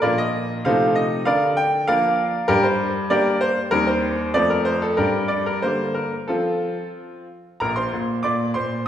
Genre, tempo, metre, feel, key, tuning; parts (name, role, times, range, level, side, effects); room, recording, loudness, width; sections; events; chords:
classical-period piano sonatina; 89-99 BPM; 2/4; rubato; Bb major; A4 = 440 Hz
bright grand piano; solo; 0.0-8.9 s; Bb1 to D6; -19 LUFS; equal
wet recital hall reverb, RT60 1.7 s; heard from further back in the room; -18 LUFS; side -10 dB against mid
0.0-7.6 A section; 7.6-8.9 B section
0.0 Bb; 0.7 F7/C; 1.3 Bb/D; 2.5 Gm; 3.7 Cm/Eb; 4.3 F; 5.0 Gm; 6.3 F; 7.6 Bbsus2; 8.2 Bbadd9